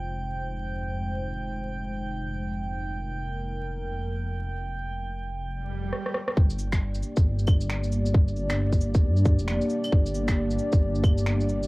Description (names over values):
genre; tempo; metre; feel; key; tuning
future garage; 135 BPM; 4/4; swing 61% on 16ths; unclear; A4 = 441 Hz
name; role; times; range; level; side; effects
dark analog pad; sustained chords; 0.0-11.7 s; Ab3 to D5; -32 LUFS; equal; chorus, sidechain pumping, cassette tape
dark detuned saw bass; bass; 0.0-11.7 s; F1 to G2; -28 LUFS; equal; sidechain pumping
drifting glass-harmonics texture; texture; 0.0-5.9 s; G5; -38 LUFS; right 3 dB; chorus, built-in reverb, cassette tape
swell; sound effects; 5.6-6.4 s; none; -37 LUFS; right 1 dB; none
electronic rim click, shaker, cabasa, finger snaps and claves; drums; 5.9-11.7 s; none; -33 LUFS; equal; low-pass filter on snare, cassette tape, low-pass filter on perc, low-pass filter on room
electronic kick drum; drums; 6.4-11.1 s; none; -20 LUFS; equal; cassette tape
room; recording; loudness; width
little or no reverb; home recording on cassette, vinyl crackle; -24 LUFS; side -23 dB against mid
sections
0.0-6.4 A section; 6.4-11.7 B section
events
filter sweep on analog synth pad 0.0-6.4; swell 5.6-6.4; drum fill 5.9-6.4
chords
0.0 Fm7; 6.4 Gm